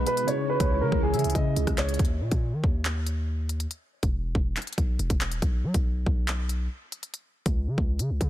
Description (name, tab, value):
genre	hip hop, drill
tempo	140 BPM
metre	4/4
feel	half-time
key	unclear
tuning	A4 = 440 Hz
part	dark concert grand piano	melody	0.0-2.0 s	Ab4 to Eb5	-29 LUFS	right 1 dB	ping-pong delay
part	mellow tine electric piano	accompaniment	0.0-2.0 s	B2 to G#4	-32 LUFS	right 1 dB	medium stereo tremolo, low-pass filter
part	hollow soft pad	sustained chords	0.0-2.0 s	Db3 to F#4	-34 LUFS	equal	ensemble chorus
part	hard-hitting 808-style bass	bass	0.0-8.3 s	Eb1 to F#3	-28 LUFS	equal	none
part	drill drum kit	drums	0.1-8.3 s	handclaps, hi-hat, kick drum, rim click	-27 LUFS	equal	none
part	warm velvety synth lead	second line	0.3-1.5 s	Db5 to Fb5	-36 LUFS	right 1 dB	chorus, ping-pong delay
room	little or no reverb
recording	dense, heavily limited modern master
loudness	-24 LUFS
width	side -13 dB against mid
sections	0.0-2.0 A section; 2.0-8.3 B section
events	break 2.0-8.3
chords	0.3 Dbm; 2.0 Eb5; 3.7 E5; 5.4 B5; 7.1 N.C.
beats	| 0.28 0.71 1.14 1.56 | 1.99 2.42 2.85 3.28 | 3.71 4.14 4.57 4.99 | 5.42 5.85 6.28 6.71 | 7.14 7.57 7.99